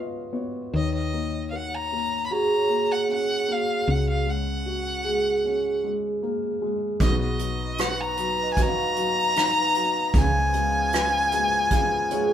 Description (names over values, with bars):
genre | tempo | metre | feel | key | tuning
acoustic folk-pop ballad | 77 BPM | 4/4 | straight | unclear | A4 = 440 Hz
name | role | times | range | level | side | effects
dark baby grand piano | accompaniment | 0.0-12.3 s | B2 to G#5 | -30 LUFS | left 4 dB | none
vibraphone with medium mallets | arpeggios | 0.0-12.3 s | F#4 to E#5 | -27 LUFS | right 3 dB | none
woody fretless electric bass | bass | 0.0-12.3 s | B1 to D#2 | -28 LUFS | equal | none
warm violin | melody | 0.8-12.3 s | D#5 to B5 | -25 LUFS | left 2 dB | none
hand-pumped harmonium | sustained chords | 7.0-12.3 s | C#3 to E#4 | -35 LUFS | right 1 dB | none
soft brush drum kit | drums | 7.0-12.3 s | hi-hat, kick drum, rim click | -25 LUFS | right 1 dB | none
room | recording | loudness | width
wet studio reverb, RT60 0.8 s | band playing live in one room | -22 LUFS | side -10 dB against mid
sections
0.7-12.3 A section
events
none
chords
0.0 C#7; 0.7 D#m7; 3.9 F#add9/C#; 7.0 B; 10.1 C#7